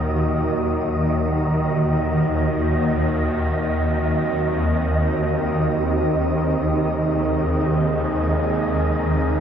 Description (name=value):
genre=dark ambient drone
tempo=free time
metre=none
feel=none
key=unclear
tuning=A4 = 440 Hz
part: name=deep dark ambient pad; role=sustained chords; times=0.0-9.4 s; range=Bb3 to Eb5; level=-25 LUFS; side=equal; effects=chorus, built-in reverb, shimmer reverb
part: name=swarming drone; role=drone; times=0.0-9.4 s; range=Eb2 to Eb3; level=-20 LUFS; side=equal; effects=built-in reverb
part: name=wind-like tuned noise texture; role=texture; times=0.0-9.4 s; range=Eb5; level=-27 LUFS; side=right 3 dB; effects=built-in reverb, shimmer reverb
room=wet echo chamber reverb, RT60 2.3 s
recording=none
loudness=-18 LUFS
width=side -8 dB against mid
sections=0.0-9.4 A section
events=none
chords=0.0 Ebm; 2.7 Ab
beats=free time